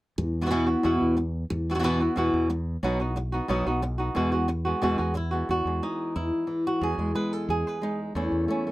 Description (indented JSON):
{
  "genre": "flamenco",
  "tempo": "181 BPM",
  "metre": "4/4",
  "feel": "straight",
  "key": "E major",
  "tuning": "A4 = 440 Hz",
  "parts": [
    { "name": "flamenco guitar", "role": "melody", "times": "0.2-8.7 s", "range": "E2 to B4", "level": "-25 LUFS", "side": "equal", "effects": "none" },
    { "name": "fingered electric bass", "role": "bass", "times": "0.2-8.5 s", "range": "B1 to E2", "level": "-30 LUFS", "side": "equal", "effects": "none" }
  ],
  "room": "light reverb",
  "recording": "close, detailed microphones",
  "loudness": "-24 LUFS",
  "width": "side -18 dB against mid",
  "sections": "0.2-5.5 A section; 5.5-8.7 B section",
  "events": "none",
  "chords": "0.2 Esus2; 2.8 B; 4.2 Eadd9"
}